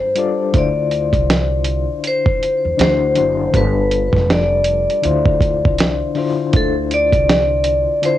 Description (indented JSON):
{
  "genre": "lo-fi hip hop",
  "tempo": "80 BPM",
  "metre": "4/4",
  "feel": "swing 61% on 16ths",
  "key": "D dorian",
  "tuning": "A4 = 440 Hz",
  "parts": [
    { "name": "vibraphone with hard mallets", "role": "melody", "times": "0.0-8.2 s", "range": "A4 to D5", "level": "-17 LUFS", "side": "left 1 dB", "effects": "low-pass filter, cassette tape" },
    { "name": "soft electric-piano-like synth keys", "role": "accompaniment", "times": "0.0-8.2 s", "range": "D3 to D5", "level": "-21 LUFS", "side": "left 6 dB", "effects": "chorus, tremolo, low-pass filter" },
    { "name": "dusty soul sampler-style drum kit", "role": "drums", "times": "0.2-8.2 s", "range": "hi-hat, kick drum, snare drum", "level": "-17 LUFS", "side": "right 2 dB", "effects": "none" },
    { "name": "upright bass", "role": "bass", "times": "0.5-7.8 s", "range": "F1 to E2", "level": "-21 LUFS", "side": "right 2 dB", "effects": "none" }
  ],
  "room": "moderate studio reverb, RT60 0.6 s",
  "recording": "home recording on cassette",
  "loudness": "-14 LUFS",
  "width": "side -13 dB against mid",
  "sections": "0.0-6.5 A section; 6.5-8.2 B section",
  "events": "none",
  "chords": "0.0 G7; 0.5 Dm7; 2.8 D7; 3.5 G7; 5.0 Dm7"
}